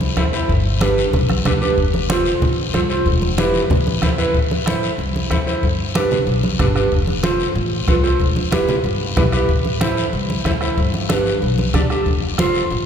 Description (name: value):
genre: latin, cumbia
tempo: 187 BPM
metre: 4/4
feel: straight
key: A minor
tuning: A4 = 442 Hz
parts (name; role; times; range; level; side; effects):
- upright bass; bass; 0.0-12.9 s; E1 to E2; -22 LUFS; left 1 dB; none
- congas; percussion; 0.0-12.9 s; none; -23 LUFS; right 1 dB; none
- mellow electric guitar; accompaniment; 0.2-12.6 s; D4 to D5; -20 LUFS; right 2 dB; none
- bombo; percussion; 0.2-12.5 s; none; -23 LUFS; left 2 dB; none
- guiro; percussion; 0.2-12.9 s; none; -28 LUFS; left 6 dB; none
room: wet church reverb, RT60 3.6 s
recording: recorded in a church or concert hall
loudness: -15 LUFS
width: side -8 dB against mid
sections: 0.0-4.3 A section; 4.3-12.9 B section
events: none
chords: 0.5 G; 1.8 F; 3.1 Em; 3.7 A5; 4.3 Am; 5.6 G; 6.9 F; 8.2 Em; 9.5 Am; 10.8 G; 12.1 F